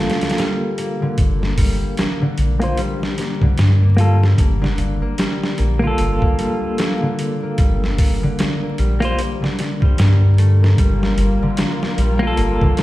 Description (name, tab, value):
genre	trip hop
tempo	75 BPM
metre	4/4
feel	swing 59% on 16ths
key	G minor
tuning	A4 = 440 Hz
part	clean electric guitar	accompaniment	0.0-12.8 s	Bb3 to C5	-23 LUFS	equal	tremolo, low-pass filter, tape echo
part	concert harp	arpeggios	0.0-12.8 s	D3 to Bb3	-22 LUFS	left 1 dB	ping-pong delay
part	boom bap sampler-style drum kit	drums	0.1-12.8 s	hi-hat, kick drum, snare drum	-20 LUFS	equal	studio reverb
part	soft dub sub bass	bass	1.2-12.6 s	G1 to G2	-16 LUFS	equal	none
part	dark studio string section	sustained chords	10.8-12.8 s	G3 to F4	-23 LUFS	left 1 dB	none
room	digital ambience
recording	played on a big sound system in a bare room, large studio reverb, vinyl crackle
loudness	-15 LUFS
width	side -16 dB against mid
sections	0.0-12.8 A section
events	filter sweep on clean electric guitar 0.0-12.8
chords	0.0 Gm7